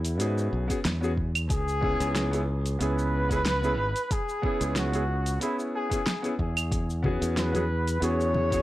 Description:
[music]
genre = sunset chillout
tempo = 92 BPM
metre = 4/4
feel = swing 54% on 16ths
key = unclear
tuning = A4 = 440 Hz
[part]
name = warm flugelhorn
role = melody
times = 0.0-8.6 s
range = E4 to C#5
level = -31 LUFS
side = left 1 dB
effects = analog delay
[part]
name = modern bright fingered electric bass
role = bass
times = 0.0-8.6 s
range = G#1 to G#2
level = -28 LUFS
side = equal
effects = none
[part]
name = deep house drum kit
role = drums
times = 0.0-8.6 s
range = cabasa, claves, hi-hat, snare drum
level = -31 LUFS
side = equal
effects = small room ambience
[part]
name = warm concert grand piano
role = accompaniment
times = 0.2-8.6 s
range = B3 to G#4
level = -31 LUFS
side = moving between left 2 dB and right 4 dB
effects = auto-pan
[part]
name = electronic kick drum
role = drums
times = 0.7-8.6 s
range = none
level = -30 LUFS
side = equal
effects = small room ambience
[part]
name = congas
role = percussion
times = 7.0-8.5 s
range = none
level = -31 LUFS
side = left 2 dB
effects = none
[sound]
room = small room ambience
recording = dry, gritty hardware recording, cassette tape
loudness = -25 LUFS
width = side -15 dB against mid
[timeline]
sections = 0.0-8.6 A section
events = none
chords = 0.0 E6; 1.5 C#m7; 6.7 E6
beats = 0.19 0.84 | 1.50 2.15 2.80 3.45 | 4.11 4.76 5.41 6.06 | 6.71 7.37 8.02

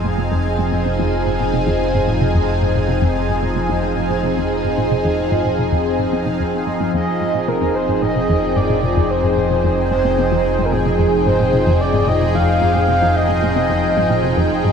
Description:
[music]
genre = ambient, sequencer-driven space music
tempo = 111 BPM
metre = 4/4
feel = straight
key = F minor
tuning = A4 = 440 Hz
[part]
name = lush unison pad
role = sustained chords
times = 0.0-14.7 s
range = F3 to Ab5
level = -18 LUFS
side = equal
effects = chorus, phaser
[part]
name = resonant blip pluck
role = riff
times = 0.0-14.7 s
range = F2 to C4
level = -22 LUFS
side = equal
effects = phaser, vintage 12-bit sampler grit, tape echo
[part]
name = fat analog bass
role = bass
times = 0.0-14.7 s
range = F1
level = -23 LUFS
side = equal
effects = none
[part]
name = bubbling stepped-filter texture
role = texture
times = 0.0-14.7 s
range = Ab4 to F5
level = -33 LUFS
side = right 1 dB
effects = chorus, built-in reverb
[part]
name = breathy flute-like synth lead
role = melody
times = 6.9-14.7 s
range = Ab4 to F5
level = -20 LUFS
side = right 1 dB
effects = lush chorus, cassette tape, tape echo
[sound]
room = wet huge ambient reverb, RT60 8.2 s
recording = in a vast, echoing space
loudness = -15 LUFS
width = side -6 dB against mid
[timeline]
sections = 0.0-14.7 A section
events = fade-in on synth texture 0.0-14.7; filter sweep on synth arpeggio sound 0.0-14.7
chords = 0.0 Fm7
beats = | 0.45 0.99 1.53 2.07 | 2.62 3.16 3.70 4.24 | 4.78 5.32 5.86 6.40 | 6.94 7.48 8.02 8.56 | 9.10 9.64 10.18 10.72 | 11.26 11.80 12.35 12.88 | 13.43 13.97 14.51

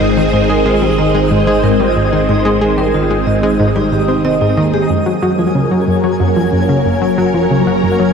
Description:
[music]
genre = ambient, sequencer-driven space music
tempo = 92 BPM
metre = 4/4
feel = straight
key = unclear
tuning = A4 = 440 Hz
[part]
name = phased string machine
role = sustained chords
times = 0.0-8.1 s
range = Eb3 to Db5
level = -15 LUFS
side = equal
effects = ensemble chorus, phaser, shimmer reverb
[part]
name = vibraphone with medium hard mallets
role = arpeggios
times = 0.0-8.0 s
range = Bb3 to Eb5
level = -20 LUFS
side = right 2 dB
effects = auto-pan, tape echo, shimmer reverb
[part]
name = analog pluck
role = riff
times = 0.0-8.1 s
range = Gb2 to C4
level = -15 LUFS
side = equal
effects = chorus, cassette tape, tape echo
[part]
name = warm sub bass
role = bass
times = 0.0-8.1 s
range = Gb1 to Ab1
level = -24 LUFS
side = equal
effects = none
[part]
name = twinkling granular texture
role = texture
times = 0.0-8.1 s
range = Eb5 to Ab5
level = -24 LUFS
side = right 1 dB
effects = built-in reverb, shimmer reverb
[sound]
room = wet lush hall reverb, RT60 2.9 s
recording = cassette tape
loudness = -11 LUFS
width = side -6 dB against mid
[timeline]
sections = 0.0-4.9 A section; 4.9-8.1 B section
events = none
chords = 0.0 Ab; 4.9 Gb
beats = 0.33 0.99 1.64 | 2.29 2.94 3.60 4.25 | 4.90 5.55 6.20 6.86 | 7.51

